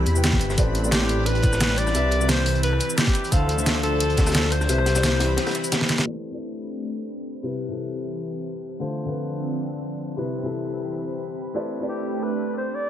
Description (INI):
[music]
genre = liquid drum and bass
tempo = 175 BPM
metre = 4/4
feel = swing 54% on 16ths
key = C major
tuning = A4 = 439 Hz
[part]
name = dark concert grand piano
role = accompaniment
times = 0.0-12.9 s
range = C3 to G5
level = -29 LUFS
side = left 3 dB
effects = ping-pong delay
[part]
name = lush unison pad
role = sustained chords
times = 0.0-12.9 s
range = E3 to B5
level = -30 LUFS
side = right 1 dB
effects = chorus, phaser
[part]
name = dark detuned saw bass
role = bass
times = 0.0-5.4 s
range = G1 to E2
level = -23 LUFS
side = equal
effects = none
[part]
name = crunchy breakbeat drum kit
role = drums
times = 0.1-6.1 s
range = hi-hat, snare drum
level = -30 LUFS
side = equal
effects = high-pass filter on hats, high-pass filter on snare, high-pass filter on room
[part]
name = pop drum kit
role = drums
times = 0.1-6.0 s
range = cabasa, hi-hat, rim click, snare drum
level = -24 LUFS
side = equal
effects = overdrive
[part]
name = electronic kick drum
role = drums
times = 0.3-4.3 s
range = none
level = -21 LUFS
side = equal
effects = overdrive
[part]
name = clear alto saxophone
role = melody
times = 0.9-5.7, 11.9-12.9 s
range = G4 to D5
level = -26 LUFS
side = left 2 dB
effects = ping-pong delay
[sound]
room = light reverb, small room ambience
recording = low-pass filter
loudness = -21 LUFS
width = side -11 dB against mid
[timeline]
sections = 0.0-6.1 A section; 6.1-12.9 B section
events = drop 0.0-6.1; break 5.4-6.1; drum fill 5.7-6.1; filter sweep on analog synth pad 6.1-12.9; filter sweep 6.1-12.9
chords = 0.0 Cmaj7; 0.6 Am11; 1.9 Cmaj7; 3.3 Dm7; 4.7 Cmaj7; 6.1 Am11; 7.4 Cmaj7; 8.8 Dm7; 10.2 Cmaj7; 11.5 Am11